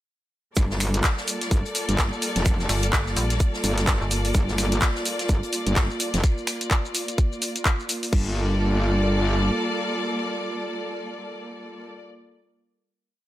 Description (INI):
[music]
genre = bass house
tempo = 127 BPM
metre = 4/4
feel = swing 58% on 16ths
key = G minor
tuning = A4 = 440 Hz
[part]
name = clear studio string section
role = sustained chords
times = 0.6-11.9 s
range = G3 to D5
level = -31 LUFS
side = left 1 dB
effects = sidechain pumping
[part]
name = metallic wobble bass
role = bass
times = 0.6-9.5 s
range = F1 to G1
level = -23 LUFS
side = equal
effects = distortion, chorus, tube saturation, sidechain pumping
[part]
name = electronic kick drum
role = drums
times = 0.6-8.2 s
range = none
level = -22 LUFS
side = equal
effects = none
[part]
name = garage drum kit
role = drums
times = 0.6-8.2 s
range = crash cymbal, finger snaps, handclaps, hi-hat, shaker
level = -27 LUFS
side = equal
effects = none
[part]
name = swinging big-band drum kit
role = drums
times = 0.6-6.2 s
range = hi-hat, shaker, snare drum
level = -36 LUFS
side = equal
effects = sidechain pumping on hats, high-pass filter on hats, high-pass filter on snare, sidechain pumping on perc, high-pass filter on perc, high-pass filter on room
[part]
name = dark chamber string section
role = texture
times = 0.6-12.0 s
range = Bb3 to D5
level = -30 LUFS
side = equal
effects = sidechain pumping
[part]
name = metallic FM bass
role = bass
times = 2.7-4.3 s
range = G1 to Bb1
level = -25 LUFS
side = equal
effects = overdrive, sidechain pumping
[sound]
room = light reverb, small room ambience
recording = none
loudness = -21 LUFS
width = side -14 dB against mid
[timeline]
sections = 0.6-8.1 drop; 8.1-11.9 final chord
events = drop 0.6-8.1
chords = 0.6 Gmadd9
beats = | 0.57 1.04 1.51 1.99 | 2.46 2.93 3.40 3.87 | 4.35 4.82 5.29 5.76 | 6.24 6.71 7.18 7.65 | 8.13 8.60 9.07 9.54 | 10.02 10.49 10.96 11.43